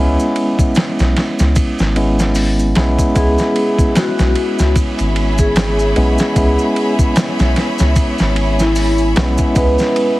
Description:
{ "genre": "trip hop", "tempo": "75 BPM", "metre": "4/4", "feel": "swing 57% on 16ths", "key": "C# minor", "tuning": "A4 = 440 Hz", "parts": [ { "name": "tine electric piano", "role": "accompaniment", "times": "0.0-10.2 s", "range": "G#3 to E4", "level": "-18 LUFS", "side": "equal", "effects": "harmonic tremolo, vintage 12-bit sampler grit, low-pass filter, tape echo" }, { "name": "soft dub sub bass", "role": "bass", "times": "0.0-9.8 s", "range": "G#1 to C#2", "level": "-16 LUFS", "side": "equal", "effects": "none" }, { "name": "maracas", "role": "percussion", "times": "0.2-9.9 s", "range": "none", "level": "-31 LUFS", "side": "right 1 dB", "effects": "none" }, { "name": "dusty soul sampler-style drum kit", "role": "drums", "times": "0.4-10.2 s", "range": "hi-hat, kick drum, ride cymbal, snare drum", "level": "-17 LUFS", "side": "equal", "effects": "studio reverb" }, { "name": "vibraphone with medium mallets", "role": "melody", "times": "3.2-10.2 s", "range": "E4 to B4", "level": "-19 LUFS", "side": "equal", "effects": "tape echo" }, { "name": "rich studio violin section", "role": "sustained chords", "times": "3.2-10.2 s", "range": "G#4 to B5", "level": "-23 LUFS", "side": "left 2 dB", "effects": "none" } ], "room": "small room reverb", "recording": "heavily compressed radio sound, multiband compression, vinyl crackle", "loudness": "-12 LUFS", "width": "side -18 dB against mid", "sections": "0.0-10.2 A section", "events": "none", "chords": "0.0 C#m7" }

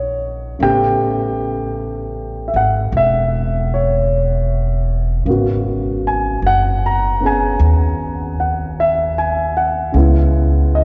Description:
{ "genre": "jazz ballad", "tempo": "51 BPM", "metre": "4/4", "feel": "swing 66% on 8ths", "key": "G# minor", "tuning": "A4 = 444 Hz", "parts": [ { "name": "dark grand piano", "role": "accompaniment", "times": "0.0-10.8 s", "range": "C#3 to A#5", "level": "-20 LUFS", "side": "equal", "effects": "none" }, { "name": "upright bass", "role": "bass", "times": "0.0-10.8 s", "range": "E1 to D#2", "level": "-20 LUFS", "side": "equal", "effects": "none" } ], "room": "wet cathedral reverb, RT60 4.5 s", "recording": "recorded in a church or concert hall, nothing above 7.6 kHz", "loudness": "-17 LUFS", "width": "mono", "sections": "0.0-10.8 A section", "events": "none", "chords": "0.0 D#m7; 0.6 A9; 5.3 G#m11; 9.9 C#m7" }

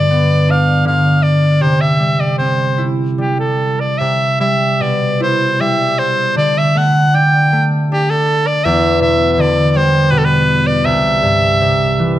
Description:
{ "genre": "celtic folk, Celtic slow air", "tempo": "73-85 BPM", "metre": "3/4", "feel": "rubato", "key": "unclear", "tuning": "A4 = 444 Hz", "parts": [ { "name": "edgy soprano saxophone", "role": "melody", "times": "0.0-12.2 s", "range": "G4 to G5", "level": "-15 LUFS", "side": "equal", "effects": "none" }, { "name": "concert harp", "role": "accompaniment", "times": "0.0-12.2 s", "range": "C2 to E4", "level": "-14 LUFS", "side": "equal", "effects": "none" } ], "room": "moderate recital hall reverb, RT60 1.8 s", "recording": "none", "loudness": "-11 LUFS", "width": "side -13 dB against mid", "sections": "0.0-12.2 A section", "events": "none", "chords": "0.0 G; 1.6 C; 4.0 Cmaj7; 6.4 D5; 8.7 Em7; 10.9 C" }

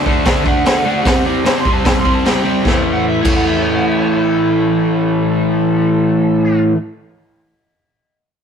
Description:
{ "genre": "garage rock duo or trio", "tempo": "150 BPM", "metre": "4/4", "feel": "straight", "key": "unclear", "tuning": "A4 = 439 Hz", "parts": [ { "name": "overdriven slide guitar", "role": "melody", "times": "0.0-6.6 s", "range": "A4 to C6", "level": "-22 LUFS", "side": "right 3 dB", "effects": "none" }, { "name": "overdriven electric guitar", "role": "riff", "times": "0.0-6.8 s", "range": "A2 to D4", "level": "-14 LUFS", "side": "equal", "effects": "none" }, { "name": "raw garage drum kit", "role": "drums", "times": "0.1-3.4 s", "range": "crash cymbal, hi-hat, kick drum, snare drum", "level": "-17 LUFS", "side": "equal", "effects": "none" } ], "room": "light reverb", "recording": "rough rehearsal-room recording, warm saturation", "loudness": "-12 LUFS", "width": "side -7 dB against mid", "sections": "0.0-2.6 A section; 2.6-5.9 B section", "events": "none", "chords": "0.0 D; 1.0 C5; 2.6 A5" }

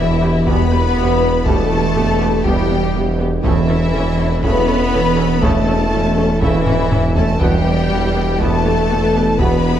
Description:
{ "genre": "cinematic, hybrid orchestral and electronic film score", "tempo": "121 BPM", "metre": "4/4", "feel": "straight", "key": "E minor", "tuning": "A4 = 439 Hz", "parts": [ { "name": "rich studio violin section", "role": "melody", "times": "0.0-9.8 s", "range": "E5 to B5", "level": "-25 LUFS", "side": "left 5 dB", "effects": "none" }, { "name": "warm symphonic violin section", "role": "second line", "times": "0.0-9.8 s", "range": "E4 to B4", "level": "-23 LUFS", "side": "left 4 dB", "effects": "none" }, { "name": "rich symphonic viola section", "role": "accompaniment", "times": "0.0-9.7 s", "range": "B3 to A4", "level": "-26 LUFS", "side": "right 1 dB", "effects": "none" }, { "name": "hollow soft pad", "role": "sustained chords", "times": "0.0-9.8 s", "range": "E3 to B4", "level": "-24 LUFS", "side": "right 1 dB", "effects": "ensemble chorus" }, { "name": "mellow French horn section", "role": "sustained chords", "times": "0.0-9.8 s", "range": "E3 to B3", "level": "-23 LUFS", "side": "left 4 dB", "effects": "none" }, { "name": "pure sine sub bass", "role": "bass", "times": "0.0-9.8 s", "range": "E1", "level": "-24 LUFS", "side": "equal", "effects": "none" }, { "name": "rich symphonic cello section", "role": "bass", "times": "0.0-9.8 s", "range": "E3 to B3", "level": "-22 LUFS", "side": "right 3 dB", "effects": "none" }, { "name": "rich symphonic double bass section", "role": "bass", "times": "0.0-9.8 s", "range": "E2", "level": "-21 LUFS", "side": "right 3 dB", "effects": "none" }, { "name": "warm tuba", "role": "bass", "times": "0.0-9.8 s", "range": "E1", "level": "-23 LUFS", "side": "right 2 dB", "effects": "none" }, { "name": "solo taiko drums", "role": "drums", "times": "0.2-9.8 s", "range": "none", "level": "-22 LUFS", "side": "equal", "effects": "none" }, { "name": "warm trombone section", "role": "sustained chords", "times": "0.5-9.6 s", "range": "B2 to B3", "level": "-28 LUFS", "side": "right 3 dB", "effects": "none" } ], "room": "moderate scoring stage reverb, RT60 1.8 s", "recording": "dark, warm production", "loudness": "-13 LUFS", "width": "side -10 dB against mid", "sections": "0.0-9.8 A section", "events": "drum fill 6.7-7.4", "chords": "0.0 Em; 3.4 A/E; 7.4 Em" }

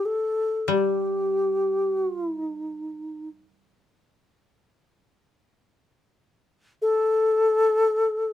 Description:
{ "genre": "japanese traditional, Japanese chamber music", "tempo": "free time", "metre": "none", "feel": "none", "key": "unclear", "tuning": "A4 = 439 Hz", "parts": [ { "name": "wooden-headed alto flute", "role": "melody", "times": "0.0-3.3, 6.8-8.3 s", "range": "G4 to A4", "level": "-22 LUFS", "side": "left 2 dB", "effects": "none" }, { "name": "koto", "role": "accompaniment", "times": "0.7-3.7 s", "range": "G3", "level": "-29 LUFS", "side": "left 4 dB", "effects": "none" } ], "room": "light reverb", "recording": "none", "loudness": "-21 LUFS", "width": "side -12 dB against mid", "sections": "0.0-8.3 A section", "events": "none", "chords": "none" }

